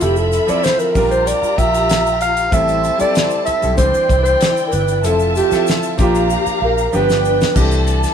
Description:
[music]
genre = lush 1970s-style soul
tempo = 95 BPM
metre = 4/4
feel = straight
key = C major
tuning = A4 = 440 Hz
[part]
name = breathy alto saxophone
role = melody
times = 0.0-7.6 s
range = F4 to F5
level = -16 LUFS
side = right 1 dB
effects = none
[part]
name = dark studio string section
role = second line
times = 0.0-8.1 s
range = D4 to B5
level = -21 LUFS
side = left 2 dB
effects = none
[part]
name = clear concert grand piano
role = accompaniment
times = 0.0-8.1 s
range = D3 to C5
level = -22 LUFS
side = right 1 dB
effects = none
[part]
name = vintage muted fingered electric bass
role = bass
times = 0.0-8.0 s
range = F1 to C2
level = -20 LUFS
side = left 1 dB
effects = none
[part]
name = damped 70s drum kit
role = drums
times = 0.0-8.1 s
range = crash cymbal, hi-hat, kick drum, snare drum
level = -20 LUFS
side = left 1 dB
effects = none
[part]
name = tube shaker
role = percussion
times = 0.0-8.1 s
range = none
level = -35 LUFS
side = right 5 dB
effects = none
[sound]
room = moderate stone room reverb, RT60 1.1 s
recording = band playing live in one room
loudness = -13 LUFS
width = side -8 dB against mid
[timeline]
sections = 0.0-7.6 A section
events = alto saxophone solo 0.0-7.6; drum fill 6.3-7.6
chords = 0.0 Fmaj7; 1.0 Bb6; 2.5 Am7; 3.8 Cadd9; 5.0 Fmaj7; 6.0 Bb6; 6.9 G7; 7.6 C69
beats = | 0.01 0.64 1.27 1.90 | 2.53 3.16 3.79 4.41 | 5.04 5.67 6.30 6.93 | 7.56

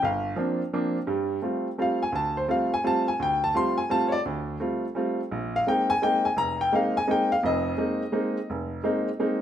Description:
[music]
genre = jazz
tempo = 170 BPM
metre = 3/4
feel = swing 64% on 8ths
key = G phrygian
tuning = A4 = 440 Hz
[part]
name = clear baby grand piano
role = solo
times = 0.0-9.4 s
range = F1 to C6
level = -23 LUFS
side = equal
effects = none
[sound]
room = moderate large studio reverb, RT60 1.1 s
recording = minimal, uncompressed stereo recording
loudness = -23 LUFS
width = side -10 dB against mid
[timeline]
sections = 0.0-1.1 A section; 1.1-9.4 A section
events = none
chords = 0.0 C9sus4; 1.1 G9sus4; 5.3 Bb9sus4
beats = | 0.02 0.37 0.72 | 1.08 1.43 1.78 | 2.13 2.49 2.84 | 3.19 3.54 3.90 | 4.25 4.60 4.96 | 5.31 5.66 6.01 | 6.37 6.72 7.07 | 7.43 7.78 8.13 | 8.48 8.84 9.19

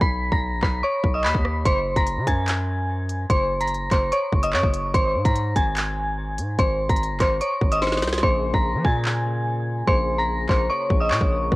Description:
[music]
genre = hip hop, drill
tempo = 146 BPM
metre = 4/4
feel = half-time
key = Bb minor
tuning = A4 = 440 Hz
[part]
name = dark detuned synth bell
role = melody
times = 0.0-11.5 s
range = C5 to B6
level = -23 LUFS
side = equal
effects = chorus, tremolo, low-pass filter, analog delay
[part]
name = distorted 808-style bass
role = bass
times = 0.0-11.6 s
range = Gb1 to F3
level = -26 LUFS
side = equal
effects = distortion
[part]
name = drill drum kit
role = drums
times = 0.0-11.6 s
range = handclaps, hi-hat, kick drum, rim click, snare drum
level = -22 LUFS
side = equal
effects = cassette tape
[part]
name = soft electric-piano-like synth keys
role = accompaniment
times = 8.2-11.6 s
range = Db3 to Bb4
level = -32 LUFS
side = left 6 dB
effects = chorus, tremolo, low-pass filter, cassette tape
[sound]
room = little or no reverb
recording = home recording on cassette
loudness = -20 LUFS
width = side -20 dB against mid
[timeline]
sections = 0.0-11.6 A section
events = break 0.0-1.7; drum fill 7.8-8.2; hi-hats muted 8.2-11.6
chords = 0.0 B; 1.7 Gb; 8.2 Bbm7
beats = | 0.01 0.42 0.83 1.24 | 1.66 2.07 2.48 2.89 | 3.30 3.71 4.12 4.53 | 4.94 5.35 5.76 6.17 | 6.59 7.00 7.41 7.82 | 8.23 8.64 9.05 9.46 | 9.87 10.29 10.70 11.11 | 11.52

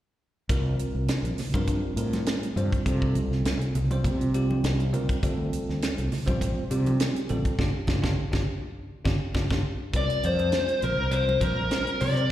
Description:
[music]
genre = electric jazz fusion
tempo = 102 BPM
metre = 4/4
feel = swing 54% on 16ths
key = unclear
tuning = A4 = 442 Hz
[part]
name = bell-like tine electric piano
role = accompaniment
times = 0.5-12.3 s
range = G3 to C5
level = -32 LUFS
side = right 1 dB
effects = fast stereo tremolo, plate reverb, slapback echo
[part]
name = fretless electric bass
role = bass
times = 0.5-12.3 s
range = G1 to C3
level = -26 LUFS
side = equal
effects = none
[part]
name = tight funk drum kit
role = drums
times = 0.5-12.3 s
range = hi-hat, kick drum, snare drum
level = -29 LUFS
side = equal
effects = none
[part]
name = congas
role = percussion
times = 1.4-12.2 s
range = none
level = -33 LUFS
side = right 1 dB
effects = slapback echo
[part]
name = smooth overdriven lead guitar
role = melody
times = 10.0-12.3 s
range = Bb4 to D5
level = -25 LUFS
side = left 2 dB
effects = slapback echo, plate reverb
[sound]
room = light reverb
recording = live gig heard through the venue's PA, recital hall reverb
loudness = -24 LUFS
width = side -13 dB against mid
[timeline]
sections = 0.5-9.9 A section; 9.9-12.3 B section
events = band accent 7.6-9.9; drum fill 9.3-9.9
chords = 0.5 C7sus4; 5.2 Dm7; 7.6 G5; 9.9 C9sus4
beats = | 0.50 1.09 1.69 2.28 | 2.87 3.46 4.05 4.64 | 5.22 5.81 6.40 6.99 | 7.58 8.17 8.76 9.35 | 9.94 10.53 11.12 11.71 | 12.30

